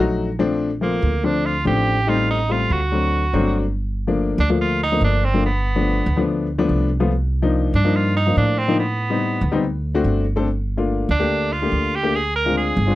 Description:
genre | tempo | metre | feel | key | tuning
jazz | 143 BPM | 4/4 | straight | Bb major, G minor from 3.8 s | A4 = 440 Hz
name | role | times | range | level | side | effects
warm baby grand piano | accompaniment | 0.0-12.9 s | F3 to A4 | -21 LUFS | left 4 dB | none
upright bass | bass | 0.0-12.9 s | G1 to A2 | -21 LUFS | right 1 dB | none
bright tenor saxophone | melody | 0.8-12.9 s | Bb3 to Bb4 | -22 LUFS | right 3 dB | slapback echo
room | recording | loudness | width
light reverb | dry, close 1970s-style studio recording | -17 LUFS | side -16 dB against mid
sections
0.0-3.8 A section; 3.8-12.9 B section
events
none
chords
0.4 Bbmaj7; 2.1 Am7b5; 2.9 D7; 3.8 Gm9; 5.4 G7; 7.1 Cm11; 8.8 Am7b5; 9.6 D7; 10.5 Gm9; 12.1 Dm7b5

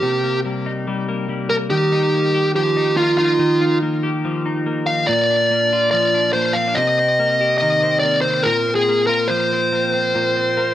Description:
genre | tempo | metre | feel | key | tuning
indie pop | 142 BPM | 4/4 | straight | Eb major | A4 = 435 Hz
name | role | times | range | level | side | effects
smooth overdriven lead guitar | melody | 0.0-10.7 s | F4 to F5 | -16 LUFS | right 1 dB | none
twelve-string electric guitar | arpeggios | 0.0-10.7 s | Bb2 to G4 | -21 LUFS | left 1 dB | none
room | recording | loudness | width
moderate studio reverb, RT60 0.5 s | none | -16 LUFS | side -12 dB against mid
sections
0.0-10.7 A section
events
none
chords
0.0 Cm7; 1.7 Ebadd9; 5.1 Bb; 6.8 Cm7; 8.5 Bbsus2

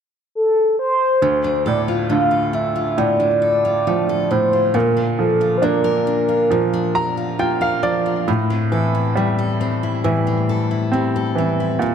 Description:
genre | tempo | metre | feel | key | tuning
pop | 68 BPM | 4/4 | straight | D minor | A4 = 438 Hz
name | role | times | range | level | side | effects
mellow horn-like synth lead | melody | 0.4-7.4 s | A4 to F5 | -18 LUFS | equal | chorus
bright baby grand piano | accompaniment | 1.2-11.9 s | D2 to Bb5 | -20 LUFS | right 4 dB | none
picked steel-string acoustic guitar | arpeggios | 1.2-11.9 s | A2 to Bb4 | -22 LUFS | left 5 dB | tape echo
room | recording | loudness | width
moderate concert hall reverb, RT60 1.9 s, small room ambience | none | -16 LUFS | side -8 dB against mid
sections
0.0-1.2 A section; 1.2-11.9 B section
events
grand piano fill 6.5-8.3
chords
0.0 N.C.; 1.2 Dm; 4.8 Bb; 8.3 Am7

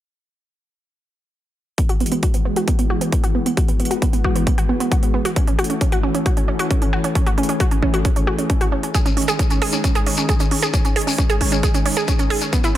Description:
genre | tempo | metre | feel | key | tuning
uplifting trance | 134 BPM | 4/4 | straight | unclear | A4 = 440 Hz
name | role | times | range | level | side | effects
lush unison pad | sustained chords | 1.8-12.8 s | D#3 to G#4 | -24 LUFS | left 1 dB | chorus, sidechain pumping
analog pluck | arpeggios | 1.8-12.8 s | B3 to G#4 | -22 LUFS | right 3 dB | chorus, sidechain pumping, tape echo
electronic hi-hat | drums | 1.8-12.8 s | none | -29 LUFS | right 4 dB | none
electronic kick drum | drums | 1.8-12.6 s | none | -18 LUFS | equal | none
shekere | percussion | 8.9-12.7 s | none | -28 LUFS | left 6 dB | none
room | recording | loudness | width
little or no reverb | none | -16 LUFS | side -13 dB against mid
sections
1.8-12.8 A section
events
filter sweep on synth arpeggio sound 1.8-12.8; filter sweep on analog synth pad 1.8-12.8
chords
1.8 Eadd9; 5.4 F#m7; 8.9 G#sus4

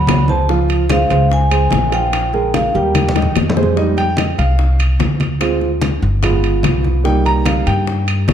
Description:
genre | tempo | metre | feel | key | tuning
Afro-Cuban jazz | 146 BPM | 4/4 | straight | F minor from 3.8 s | A4 = 437 Hz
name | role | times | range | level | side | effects
vibraphone with medium hard mallets | melody | 0.0-3.3 s | F5 to B5 | -19 LUFS | equal | none
warm upright piano | accompaniment | 0.0-8.3 s | Eb3 to Bb5 | -18 LUFS | right 4 dB | none
upright bass | bass | 0.0-8.3 s | G1 to G2 | -16 LUFS | equal | none
bongos | percussion | 0.1-8.3 s | none | -22 LUFS | left 6 dB | none
claves | percussion | 0.1-8.3 s | none | -32 LUFS | left 7 dB | none
congas | percussion | 0.1-8.3 s | none | -22 LUFS | left 1 dB | none
timbales | percussion | 0.1-8.3 s | none | -26 LUFS | right 5 dB | none
room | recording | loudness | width
moderate large studio reverb, RT60 1.4 s | dark, warm production | -13 LUFS | side -9 dB against mid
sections
0.0-3.8 A section; 3.8-8.3 B section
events
drum fill 3.0-3.8; upright piano solo 3.8-8.3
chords
0.5 Dbmaj7; 2.1 Bb5; 3.0 Ebadd9; 3.8 Fm9; 5.4 Dm7b5; 6.2 G7b9; 7.1 Cm7

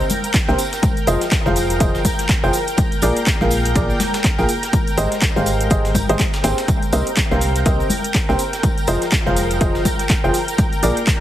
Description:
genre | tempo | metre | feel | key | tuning
piano house | 123 BPM | 4/4 | swing 58% on 16ths | unclear | A4 = 440 Hz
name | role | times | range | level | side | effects
analog string pad | sustained chords | 0.0-11.2 s | Bb4 to G5 | -26 LUFS | equal | ensemble chorus, vintage 12-bit sampler grit, sidechain pumping
warm upright piano | riff | 0.0-11.0 s | F3 to G5 | -21 LUFS | equal | sidechain pumping, ping-pong delay
house drum kit | drums | 0.0-11.2 s | handclaps, hi-hat, shaker | -24 LUFS | equal | overdrive
tambourine and congas | percussion | 0.0-11.2 s | none | -28 LUFS | left 3 dB | none
breakbeat sampler-style drum kit | drums | 0.1-11.2 s | hi-hat, snare drum | -32 LUFS | equal | none
electronic kick drum | drums | 0.3-11.2 s | none | -19 LUFS | equal | overdrive
organ-like FM bass | bass | 0.5-10.9 s | F1 to C2 | -21 LUFS | equal | sidechain pumping
room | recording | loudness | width
digital ambience | heavily compressed radio sound | -15 LUFS | side -12 dB against mid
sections
0.0-11.2 A section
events
none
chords
0.0 C7(no3); 0.8 Fm7; 2.8 Bb7; 4.7 Abmaj7; 6.7 Cm7; 8.6 Fm7; 10.6 Bb7

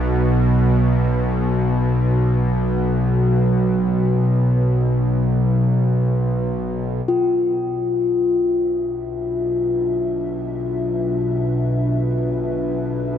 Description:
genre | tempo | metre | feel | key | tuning
dark ambient drone | free time | none | none | unclear | A4 = 440 Hz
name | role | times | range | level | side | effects
bowed-like drone | drone | 0.0-13.2 s | B1 to B2 | -18 LUFS | equal | built-in reverb
dark analog pad | sustained chords | 7.1-13.2 s | D4 to E5 | -28 LUFS | equal | chorus
quartz singing bowl | texture | 7.1-13.2 s | E#4 | -20 LUFS | left 4 dB | none
room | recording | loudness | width
wet cathedral reverb, RT60 6.3 s | none | -17 LUFS | side -9 dB against mid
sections
0.0-7.1 A section; 7.1-13.2 B section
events
fade-in on synth drone 7.1-13.2; fade-in on analog synth pad 7.1-13.2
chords
0.0 N.C.; 7.1 Bm

